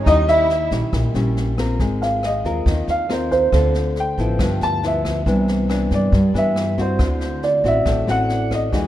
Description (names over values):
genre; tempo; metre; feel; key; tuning
bossa nova; 138 BPM; 4/4; straight; unclear; A4 = 435 Hz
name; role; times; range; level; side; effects
warm symphonic violin section; second line; 0.0-0.7 s; Eb4 to Fb4; -27 LUFS; right 4 dB; none
nylon-string guitar; accompaniment; 0.0-8.9 s; G2 to Bb4; -24 LUFS; left 2 dB; none
warm baby grand piano; accompaniment; 0.0-4.4, 7.4-8.7 s; C5 to F5; -22 LUFS; right 3 dB; none
warm baby grand piano; melody; 0.1-8.9 s; C5 to A5; -22 LUFS; left 1 dB; none
upright bass; bass; 0.1-8.9 s; G1 to G2; -21 LUFS; equal; none
jazz brush drum kit; drums; 0.1-8.8 s; kick drum, rim click, snare drum; -26 LUFS; equal; none
room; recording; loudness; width
light reverb, studio ambience; rough home demo mix; -16 LUFS; side -13 dB against mid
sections
0.0-1.8 A section; 1.8-8.9 B section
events
grand piano solo 1.8-8.9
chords
0.1 Eb7b9; 1.8 Ab69; 3.5 Dm7; 4.4 G6; 5.3 Cmaj9; 7.0 D9